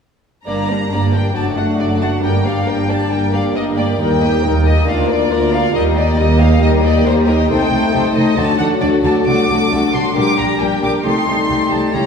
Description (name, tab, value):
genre	quick classical-period movement for symphony orchestra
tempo	136 BPM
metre	4/4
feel	rubato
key	G minor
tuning	A4 = 442 Hz
part	rich studio violin section	melody	0.5-12.1 s	Bb4 to D6	-21 LUFS	left 2 dB	none
part	warm chamber violin section	second line	0.5-12.1 s	Bb3 to F#5	-20 LUFS	left 3 dB	none
part	dark chamber viola section	accompaniment	0.5-12.1 s	F#3 to G4	-21 LUFS	right 1 dB	none
part	mellow French horn section	sustained chords	0.5-12.1 s	F#3 to G4	-19 LUFS	left 3 dB	none
part	warm studio cello section	bass	0.5-12.0 s	D2 to D3	-22 LUFS	right 2 dB	none
part	warm studio double bass section	bass	0.5-12.0 s	F#1 to Eb2	-20 LUFS	right 2 dB	none
room	wet scoring stage reverb, RT60 1.5 s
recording	heard from further back in the room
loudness	-13 LUFS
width	side -6 dB against mid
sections	0.5-12.1 A section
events	none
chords	0.5 Gm; 1.4 D/F#; 2.2 Gm; 4.0 Eb; 4.9 Bb/D; 5.7 Eb; 7.5 Am7b5/C; 8.4 D; 9.3 D7/C; 10.2 Gm/Bb; 11.0 Am7b5/C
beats	| 0.47 0.92 1.36 1.79 | 2.23 2.67 3.11 3.55 | 4.00 4.44 4.87 5.31 | 5.75 6.19 6.62 7.05 | 7.50 7.94 8.37 8.81 | 9.27 9.71 10.16 10.61 | 11.05 11.49 11.94